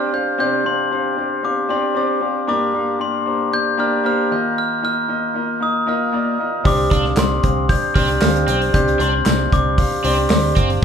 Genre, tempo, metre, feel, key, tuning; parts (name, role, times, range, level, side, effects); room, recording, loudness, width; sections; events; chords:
piano-driven pop; 115 BPM; 4/4; straight; A4 = 445 Hz
glockenspiel with rubber mallets; melody; 0.0-10.5 s; C6 to G6; -20 LUFS; left 2 dB
clear grand piano; accompaniment; 0.0-10.8 s; G2 to F5; -20 LUFS; equal
vintage muted fingered electric bass; bass; 6.7-10.8 s; F#1 to D2; -21 LUFS; equal
modern studio drum kit; drums; 6.7-10.8 s; handclaps, hi-hat, kick drum, snare drum; -18 LUFS; equal
cranked stack guitar; riff; 6.9-10.7 s; C4 to D4; -26 LUFS; right 4 dB; overdrive
tambourine; percussion; 7.2-10.4 s; -35 LUFS; right 6 dB
wet large studio reverb, RT60 0.9 s; band playing live in one room; -16 LUFS; side -7 dB against mid
0.0-10.8 A section
0.0 Csus2; 2.5 Gm; 4.3 Ebsus2; 6.6 Csus2